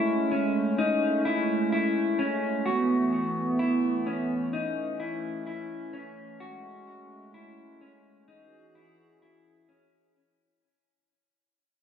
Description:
dream pop; 64 BPM; 4/4; straight; E major; A4 = 442 Hz
hollow soft pad; sustained chords; 0.0-10.1 s; E3 to G#4; -28 LUFS; right 2 dB; chorus
mellow electric guitar; arpeggios; 0.0-10.2 s; C#4 to F#4; -29 LUFS; left 3 dB; lush chorus, tape echo
wet recital hall reverb, RT60 1.5 s; -25 LUFS; side -8 dB against mid
0.0-10.2 A section
fade-out 0.0-10.2
0.0 Amaj7; 2.7 B7sus4; 6.4 Amaj7; 8.3 E69
0.78 1.72 | 2.65 3.59 4.53 5.47 | 6.40 7.34 8.28 9.22

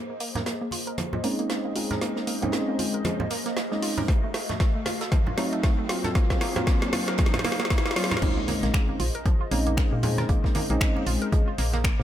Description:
deep house; 116 BPM; 4/4; swing 58% on 16ths; Bb minor; A4 = 443 Hz
hollow soft pad; sustained chords; 0.0-12.0 s; Gb3 to F5; -35 LUFS; left 1 dB; ensemble chorus, vintage 12-bit sampler grit, sidechain pumping
analog pluck; arpeggios; 0.0-12.0 s; F3 to Bb4; -33 LUFS; right 4 dB; chorus, sidechain pumping, ping-pong delay
riser and impact; sound effects; 0.0-10.3 s; -39 LUFS; left 1 dB
deep house drum kit; drums; 0.2-12.0 s; crash cymbal, finger snaps, hi-hat, rim click, snare drum; -31 LUFS; left 1 dB
warm soul drum kit; drums; 0.2-12.0 s; hi-hat, snare drum; -40 LUFS; right 2 dB; sidechain pumping on hats, high-pass filter on hats, high-pass filter on snare, high-pass filter on room
congas; percussion; 0.4-11.8 s; -34 LUFS; right 2 dB; sidechain pumping on perc
tine electric piano; stabs; 1.2-11.5 s; Gb3 to Ab4; -29 LUFS; equal; phaser, sidechain pumping, low-pass filter, digital delay
electronic kick drum; drums; 4.1-12.0 s; -23 LUFS; equal
woody FM bass; bass; 8.2-12.0 s; Bb1 to Bb2; -26 LUFS; equal
light reverb; -23 LUFS; side -11 dB against mid
0.0-8.2 A section; 8.2-12.0 B section
build-up 0.0-8.2; drum fill 0.0-8.2; filter sweep on tine electric piano 0.0-8.2; filter sweep on synth arpeggio sound 0.0-8.2; drop 8.2-12.0; impact 8.2-10.3
0.0 Bbm11; 4.1 F7b9; 6.2 Ab13; 8.2 Bbm11
0.46 0.98 1.50 | 2.02 2.53 3.05 3.57 | 4.08 4.60 5.12 5.63 | 6.15 6.67 7.19 7.70 | 8.22 8.74 9.26 9.77 | 10.29 10.81 11.32 11.84

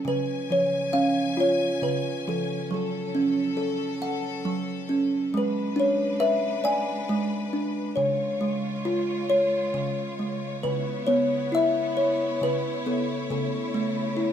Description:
children's music, lullaby; 45 BPM (dotted quarters); 6/8; straight; A4 = 439 Hz
kalimba; melody; 0.0-14.3 s; C#3 to G#5; -24 LUFS; equal
clear symphonic string section; sustained chords; 0.0-14.3 s; C#3 to G#5; -34 LUFS; left 3 dB
moderate stone room reverb, RT60 1.2 s; band playing live in one room; -23 LUFS; side -9 dB against mid
0.1-14.3 A section
0.1 C#; 2.7 F#m; 5.3 G#dim; 8.0 C#; 10.6 C#m7; 13.3 A/C#
| 0.06 1.39 | 2.71 4.03 | 5.34 6.66 | 7.97 9.30 | 10.64 11.97 | 13.29

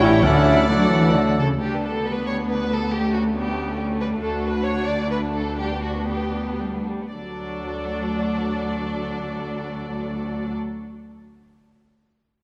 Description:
quick classical-period movement for symphony orchestra; 107-142 BPM; 3/4; rubato; D major; A4 = 440 Hz
muted chamber violin section; melody; 0.0-10.5 s; D4 to G5; -32 LUFS; equal
mellow hollow flute section; second line; 0.0-1.4 s; D5 to E5; -28 LUFS; equal
muted chamber violin section; second line; 0.0-10.5 s; G3 to D5; -34 LUFS; equal
warm clarinet; second line; 0.0-1.4 s; A3 to C#4; -30 LUFS; equal
warm cor anglais; second line; 0.0-1.4 s; A4 to C#5; -29 LUFS; equal
mellow bassoon; accompaniment; 0.0-1.4 s; F#3 to G3; -29 LUFS; equal
muted chamber viola section; accompaniment; 0.0-10.5 s; F#3 to F#4; -30 LUFS; equal
mellow French horn section; sustained chords; 0.0-1.4 s; A3 to C#4; -30 LUFS; equal
muted chamber double bass section; bass; 0.0-1.4 s; A1 to D2; -28 LUFS; equal
muted studio cello section; bass; 0.0-10.5 s; D2 to F#3; -27 LUFS; equal
timpani; percussion; 0.2-0.9 s; D3; -28 LUFS; equal
wet scoring stage reverb, RT60 2.0 s; -23 LUFS; mono
0.0-1.6 A section; 1.6-7.1 B section; 7.1-10.4 C section
slowing down 3.6-7.1
0.2 D; 1.6 G/D; 2.9 A7/D; 4.2 D; 5.6 G/D; 7.1 D
| 0.23 0.70 1.16 | 1.62 2.06 2.50 | 2.93 3.36 3.78 | 4.22 4.66 5.11 | 5.57 6.06 6.58 | 7.13 7.68 8.23 | 8.77 9.31 9.85

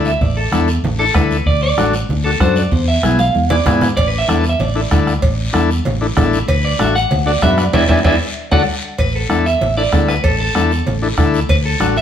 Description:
latin, cumbia; 191 BPM; 4/4; straight; A4 = 440 Hz
clean electric guitar; melody; 0.0-12.0 s; A4 to F#5; -19 LUFS; right 2 dB; spring reverb, plate reverb
combo organ; accompaniment; 0.0-12.0 s; B3 to B4; -19 LUFS; left 4 dB
fingered electric bass; bass; 0.0-12.0 s; A1 to G#2; -18 LUFS; equal
guiro; percussion; 0.1-12.0 s; -29 LUFS; left 4 dB
bombo; percussion; 0.2-12.0 s; -19 LUFS; right 1 dB
congas; percussion; 0.2-12.0 s; -23 LUFS; equal
cowbell and timbales; percussion; 4.0-11.7 s; -24 LUFS; right 1 dB
wet studio reverb, RT60 0.7 s; heard from further back in the room; -13 LUFS; side -9 dB against mid
0.0-9.0 A section; 9.0-12.0 B section
clean electric guitar solo 0.0-9.0; drum fill 3.2-4.0, 8.5-9.0; band accent 7.7-9.0
0.0 Asus4; 1.5 D; 2.7 E7; 4.0 Asus4; 6.5 D; 7.7 E7; 8.4 D; 9.0 Asus4; 11.5 D
| 0.21 0.53 0.84 1.15 | 1.47 1.78 2.10 2.41 | 2.72 3.04 3.35 3.66 | 3.98 4.29 4.60 4.92 | 5.23 5.54 5.86 6.17 | 6.48 6.80 7.11 7.42 | 7.74 8.05 8.36 8.68 | 8.99 9.30 9.62 9.93 | 10.24 10.55 10.87 11.18 | 11.49 11.81

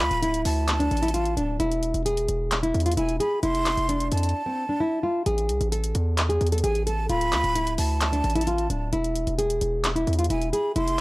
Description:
hip hop, trap; 131 BPM; 4/4; half-time; A4 = 436 Hz
nylon-string guitar; melody; 0.0-11.0 s; C4 to A4; -26 LUFS; equal
breathy jazz flute; second line; 0.0-11.0 s; G#5 to C6; -29 LUFS; right 1 dB; tape echo
hard-hitting 808-style bass; bass; 0.0-11.0 s; D1 to F2; -26 LUFS; equal
trap drum kit; drums; 0.0-11.0 s; handclaps, hi-hat; -30 LUFS; equal; overdrive
downlifter; sound effects; 0.2-1.6 s; barely audible
small room reverb; dry, gritty hardware recording; -22 LUFS; side -20 dB against mid
0.0-11.0 A section
break 4.3-5.3
0.0 Dm; 1.6 E; 3.4 F; 5.3 A5; 7.1 Dm; 8.9 E
0.23 0.68 1.14 | 1.60 2.06 2.52 2.97 | 3.43 3.89 4.35 4.80 | 5.26 5.72 6.18 6.64 | 7.09 7.55 8.01 8.47 | 8.93 9.38 9.84 10.30 | 10.76

